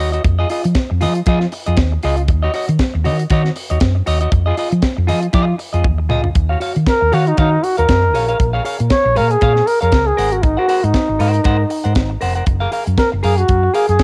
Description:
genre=disco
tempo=118 BPM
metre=4/4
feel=swing 56% on 16ths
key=Eb dorian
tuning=A4 = 441 Hz
part: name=semi-hollow electric guitar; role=accompaniment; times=0.0-13.9 s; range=F4 to Gb5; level=-24 LUFS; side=equal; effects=warbly pitch drift, cassette tape
part: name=hollow-body short-scale fingered electric bass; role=bass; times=0.0-14.0 s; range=F1 to F3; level=-19 LUFS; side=equal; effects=none
part: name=tight funk drum kit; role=drums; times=0.1-14.0 s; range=hi-hat, kick drum, snare drum, toms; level=-21 LUFS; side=equal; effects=cassette tape
part: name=breathy flugelhorn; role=melody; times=6.9-14.0 s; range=Eb4 to Db5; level=-18 LUFS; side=equal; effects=cassette tape
room=small room ambience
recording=home recording on cassette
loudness=-16 LUFS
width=mono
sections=0.0-6.4 A section; 6.4-14.0 B section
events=drum fill 5.8-6.4; flugelhorn solo 6.4-14.0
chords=0.2 Fm7; 2.3 Ebm7; 4.3 Fm7; 6.4 Ebm9; 8.1 Bbm7; 10.2 Ab9; 12.5 Gbmaj9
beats=| 0.24 0.75 1.26 1.77 | 2.28 2.79 3.30 3.81 | 4.32 4.83 5.34 5.85 | 6.36 6.87 7.38 7.89 | 8.40 8.91 9.42 9.93 | 10.43 10.94 11.45 11.96 | 12.47 12.98 13.49 13.99

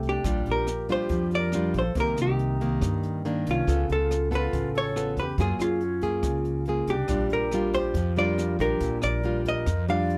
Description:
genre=bossa nova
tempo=140 BPM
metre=4/4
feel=straight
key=Bb major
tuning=A4 = 440 Hz
part: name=nylon-string guitar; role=accompaniment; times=0.0-10.2 s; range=G2 to A4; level=-30 LUFS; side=equal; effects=none
part: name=upright bass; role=bass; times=0.0-10.2 s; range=A1 to G2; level=-32 LUFS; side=equal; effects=none
part: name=jazz brush drum kit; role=drums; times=0.0-10.2 s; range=hi-hat, kick drum, rim click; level=-37 LUFS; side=equal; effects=none
part: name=vintage hollow-body jazz guitar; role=melody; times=0.1-10.2 s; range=F4 to F5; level=-31 LUFS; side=equal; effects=none
part: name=reedy concert flute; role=second line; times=0.1-10.2 s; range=Db4 to D5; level=-40 LUFS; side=equal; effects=none
room=light reverb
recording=dry, close 1970s-style studio recording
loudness=-26 LUFS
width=mono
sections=0.3-10.2 A section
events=none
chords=0.3 Bb6; 2.0 Cm9; 3.7 Db7b13; 5.4 Gbmaj9; 7.1 Bb6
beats=| 0.26 0.68 1.11 1.54 | 1.97 2.40 2.82 3.25 | 3.68 4.11 4.53 4.96 | 5.39 5.82 6.24 6.67 | 7.10 7.53 7.96 8.38 | 8.81 9.24 9.67 10.10

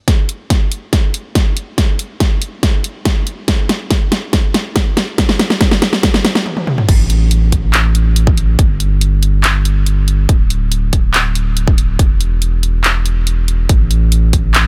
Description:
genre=future bass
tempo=141 BPM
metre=4/4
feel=half-time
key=unclear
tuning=A4 = 440 Hz
part: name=dubstep drum kit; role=drums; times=0.1-14.6 s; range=crash cymbal, handclaps, hi-hat, snare drum, toms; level=-18 LUFS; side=equal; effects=none
part: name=electronic kick drum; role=drums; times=0.1-14.4 s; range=none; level=-16 LUFS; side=equal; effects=none
part: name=saturated sub bass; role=bass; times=6.9-14.7 s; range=D1 to A1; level=-15 LUFS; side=equal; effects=tube saturation, sidechain pumping
room=little or no reverb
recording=none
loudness=-14 LUFS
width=mono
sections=0.0-6.9 A section; 6.9-14.7 B section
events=build-up 0.0-6.9; drum fill 0.1-6.5, 6.5-6.9; stop 6.5-6.9; drop 6.9-14.7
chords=none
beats=| 0.08 0.50 0.93 1.35 | 1.78 2.21 2.63 3.06 | 3.48 3.91 4.33 4.76 | 5.18 5.61 6.04 6.46 | 6.89 7.31 7.74 8.16 | 8.59 9.01 9.44 9.87 | 10.29 10.72 11.14 11.57 | 11.99 12.42 12.84 13.27 | 13.70 14.12 14.55

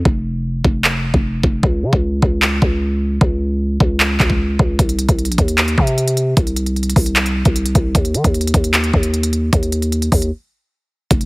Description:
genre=hip hop, trap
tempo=152 BPM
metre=4/4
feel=half-time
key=unclear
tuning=A4 = 438 Hz
part: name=growling 808-style bass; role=bass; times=0.0-11.3 s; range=F1 to Eb3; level=-17 LUFS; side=equal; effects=none
part: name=trap drum kit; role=drums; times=0.1-11.3 s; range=handclaps, hi-hat, kick drum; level=-16 LUFS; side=equal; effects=overdrive
room=little or no reverb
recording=heavily compressed radio sound, multiband compression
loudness=-14 LUFS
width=side -24 dB against mid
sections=0.0-11.3 A section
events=break 0.0-4.8, 10.3-11.1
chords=none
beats=| 0.05 0.45 0.84 1.24 | 1.63 2.03 2.42 2.82 | 3.21 3.61 4.00 4.40 | 4.79 5.19 5.58 5.97 | 6.37 6.76 7.16 7.55 | 7.95 8.34 8.74 9.13 | 9.53 9.92 10.32 10.71 | 11.11

